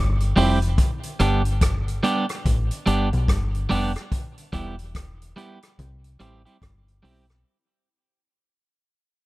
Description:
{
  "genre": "roots reggae",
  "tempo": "72 BPM",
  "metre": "4/4",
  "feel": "swing 62% on 16ths",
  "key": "unclear",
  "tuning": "A4 = 440 Hz",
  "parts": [
    { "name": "deep dub fingered electric bass", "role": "bass", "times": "0.0-7.4 s", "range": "E1 to C2", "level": "-23 LUFS", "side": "equal", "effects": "none" },
    { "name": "vintage drum kit", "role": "drums", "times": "0.2-7.4 s", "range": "hi-hat, kick drum, rim click", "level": "-24 LUFS", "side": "left 1 dB", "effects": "none" },
    { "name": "electric guitar at the edge of break-up", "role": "accompaniment", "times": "0.4-7.2 s", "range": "G3 to G4", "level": "-24 LUFS", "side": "right 2 dB", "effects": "tape echo" }
  ],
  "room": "small room ambience",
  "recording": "none",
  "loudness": "-20 LUFS",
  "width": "side -19 dB against mid",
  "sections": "0.0-7.5 A section",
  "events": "fade-out 0.0-7.5",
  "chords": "0.0 C; 0.8 G; 4.1 Em; 5.8 C",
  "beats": "| 0.79 1.62 2.45 3.28 | 4.12 4.95 5.78 6.62"
}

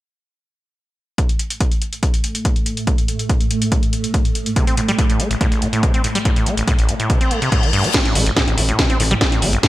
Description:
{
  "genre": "driving peak-time techno",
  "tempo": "142 BPM",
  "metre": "4/4",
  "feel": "straight",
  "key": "A minor",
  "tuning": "A4 = 440 Hz",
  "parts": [
    { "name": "swarming drone", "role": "drone", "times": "2.3-8.0 s", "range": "A2 to A3", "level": "-25 LUFS", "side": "right 2 dB", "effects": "built-in reverb, sidechain pumping" },
    { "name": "electronic kick drum", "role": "drums", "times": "1.2-9.7 s", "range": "none", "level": "-18 LUFS", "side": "equal", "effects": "none" },
    { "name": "techno drum kit", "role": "drums", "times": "1.2-9.7 s", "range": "crash cymbal, hi-hat, snare drum, toms", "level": "-22 LUFS", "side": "equal", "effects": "sidechain pumping on hats, sidechain pumping on cymbals, sidechain pumping on toms, gated reverb" },
    { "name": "acid bass, saw", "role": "riff", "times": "4.6-9.7 s", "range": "A1 to C4", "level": "-20 LUFS", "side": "equal", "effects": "sidechain pumping, digital delay" },
    { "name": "reverse cymbal", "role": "sound effects", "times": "7.2-7.9 s", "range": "none", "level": "-25 LUFS", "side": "left 6 dB", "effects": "none" },
    { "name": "gritty driven synth bass", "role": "bass", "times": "8.2-9.6 s", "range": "G1 to A1", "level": "-19 LUFS", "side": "equal", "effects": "sidechain pumping" }
  ],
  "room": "light reverb",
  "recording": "bright 1980s-style digital production",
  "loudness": "-15 LUFS",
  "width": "side -16 dB against mid",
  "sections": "1.2-7.9 A section; 7.9-9.7 B section",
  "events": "reverse cymbal 7.2-7.9",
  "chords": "1.2 A5",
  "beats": "| 1.18 1.60 2.03 2.45 | 2.87 3.29 3.72 4.14 | 4.56 4.99 5.41 5.83 | 6.25 6.67 7.10 7.52 | 7.94 8.37 8.79 9.21 | 9.63"
}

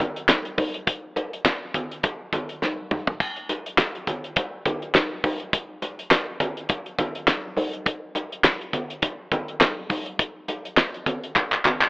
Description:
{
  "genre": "funk",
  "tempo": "103 BPM",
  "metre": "4/4",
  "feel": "swing 56% on 16ths",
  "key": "none",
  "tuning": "none",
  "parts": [
    { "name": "damped 70s drum kit", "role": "drums", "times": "0.0-11.9 s", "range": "handclaps, hi-hat, kick drum, snare drum, splash cymbal, toms", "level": "-21 LUFS", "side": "equal", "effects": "none" },
    { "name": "congas", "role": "percussion", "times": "0.0-11.8 s", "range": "none", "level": "-29 LUFS", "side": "equal", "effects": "none" }
  ],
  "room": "light reverb",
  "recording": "telephone sound",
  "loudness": "-22 LUFS",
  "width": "side -25 dB against mid",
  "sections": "0.0-11.9 A section",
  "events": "drum fill 2.6-3.2, 11.4-11.9",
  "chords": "none",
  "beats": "0.29 | 0.87 1.45 2.04 2.62 | 3.20 3.78 4.37 4.95 | 5.53 6.11 6.70 7.28 | 7.86 8.44 9.03 9.61 | 10.19 10.77 11.36"
}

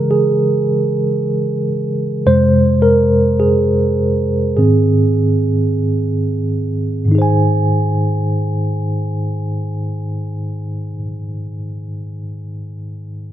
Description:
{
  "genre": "pop",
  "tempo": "44-58 BPM",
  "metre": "4/4",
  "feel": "straight",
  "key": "Ab major",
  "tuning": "A4 = 440 Hz",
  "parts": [
    { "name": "tine electric piano", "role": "accompaniment", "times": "0.0-13.3 s", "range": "F2 to Ab5", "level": "-14 LUFS", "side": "equal", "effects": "medium tremolo" }
  ],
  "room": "light reverb, digital ambience",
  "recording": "none",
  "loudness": "-14 LUFS",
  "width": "side -12 dB against mid",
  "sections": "0.0-7.1 A section; 7.1-12.5 B section",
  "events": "slowing down 0.0-7.1; tine electric piano solo 0.0-7.1",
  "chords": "0.0 Dbm; 2.3 Fm; 4.6 Ab",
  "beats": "0.12 1.18 | 2.27 3.40 4.58 5.82 | 7.13 8.48 9.84 11.19"
}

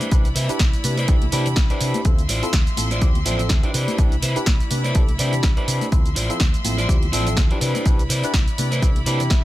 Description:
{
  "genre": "filtered disco house",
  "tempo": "124 BPM",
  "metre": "4/4",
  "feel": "swing 56% on 16ths",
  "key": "unclear",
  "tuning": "A4 = 436 Hz",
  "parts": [
    { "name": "tine electric piano", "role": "accompaniment", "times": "0.0-9.4 s", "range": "F3 to B5", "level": "-28 LUFS", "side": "equal", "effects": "phaser, sidechain pumping" },
    { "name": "rich chamber string section", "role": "sustained chords", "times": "0.0-9.4 s", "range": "F3 to C6", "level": "-30 LUFS", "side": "left 1 dB", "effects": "sidechain pumping" },
    { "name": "electric guitar at the edge of break-up", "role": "riff", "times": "0.0-9.4 s", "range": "E4 to E5", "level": "-28 LUFS", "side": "equal", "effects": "sidechain pumping" },
    { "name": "punchy analog drum machine", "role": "drums", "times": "0.0-9.4 s", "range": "hi-hat, shaker, snare drum", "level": "-26 LUFS", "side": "right 1 dB", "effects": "sidechain pumping on hats, sidechain pumping on perc" },
    { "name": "tube shaker and congas", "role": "percussion", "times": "0.0-9.4 s", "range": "none", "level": "-34 LUFS", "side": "left 2 dB", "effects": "sidechain pumping on perc" },
    { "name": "hollow-body short-scale fingered electric bass", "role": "bass", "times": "0.1-9.4 s", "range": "A1 to C3", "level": "-24 LUFS", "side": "equal", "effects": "sidechain pumping" },
    { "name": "electronic kick drum", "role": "drums", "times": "0.1-9.4 s", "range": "none", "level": "-18 LUFS", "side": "equal", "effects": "none" }
  ],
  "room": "little or no reverb",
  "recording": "none",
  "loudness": "-17 LUFS",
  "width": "side -15 dB against mid",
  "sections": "0.0-9.4 A section",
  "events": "clean electric guitar fill 8.8-9.4",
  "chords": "0.0 Cmaj9; 2.1 Dm9; 3.7 Cmaj9; 5.9 Dm9; 7.6 Cmaj9",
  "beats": "| 0.12 0.60 1.08 1.57 | 2.05 2.54 3.02 3.50 | 3.99 4.47 4.95 5.44 | 5.92 6.41 6.89 7.37 | 7.86 8.34 8.82 9.31"
}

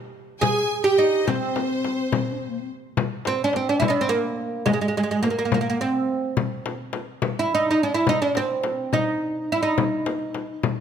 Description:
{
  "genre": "Arabic maqam ensemble",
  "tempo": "70 BPM (dotted quarters)",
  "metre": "6/8",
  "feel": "straight",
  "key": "C maqam saba",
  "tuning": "A4 = 440 Hz",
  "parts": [
    { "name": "oud", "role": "melody", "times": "0.4-10.8 s", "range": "Ab3 to Ab4", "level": "-22 LUFS", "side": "right 2 dB", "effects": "none" },
    { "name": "bright symphonic violin section", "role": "second line", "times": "0.4-2.7 s", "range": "C5 to Ab5", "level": "-30 LUFS", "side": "left 1 dB", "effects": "none" },
    { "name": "mellow hollow alto flute", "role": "second line", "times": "0.4-2.7 s", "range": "Bb3 to Ab4", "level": "-29 LUFS", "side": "left 5 dB", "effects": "none" },
    { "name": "frame drum", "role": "percussion", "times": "0.4-10.8 s", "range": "none", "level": "-26 LUFS", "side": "left 7 dB", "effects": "none" }
  ],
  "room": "light reverb",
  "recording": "none",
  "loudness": "-21 LUFS",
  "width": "side -8 dB against mid",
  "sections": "0.0-3.0 A section; 3.0-10.8 B section",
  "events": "none",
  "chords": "none",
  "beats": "0.41 | 1.27 2.12 | 2.97 3.82 | 4.67 5.52 | 6.38 7.23 | 8.08 8.93 | 9.78 10.63"
}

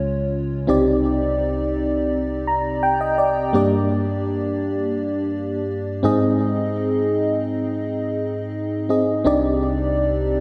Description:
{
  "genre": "pop",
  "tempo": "84 BPM",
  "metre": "4/4",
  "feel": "straight",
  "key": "C minor",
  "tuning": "A4 = 440 Hz",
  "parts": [
    { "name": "FM electric piano with soft pad layer", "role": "solo", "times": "0.0-10.4 s", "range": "C2 to Bb5", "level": "-21 LUFS", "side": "equal", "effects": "chorus, delay" }
  ],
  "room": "wet lush hall reverb, RT60 2.7 s",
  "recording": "dreamy mix soaked in reverb",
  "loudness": "-21 LUFS",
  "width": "mono",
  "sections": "0.0-9.3 A section; 9.3-10.4 B section",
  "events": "FM electric piano fill 2.1-3.5",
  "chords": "0.0 Db; 0.7 Cmadd9; 3.5 Gm; 6.0 Ab; 9.3 Cmadd9",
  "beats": "| 0.68 1.40 2.11 2.83 | 3.54 4.26 4.97 5.68 | 6.40 7.11 7.83 8.54 | 9.26 9.97"
}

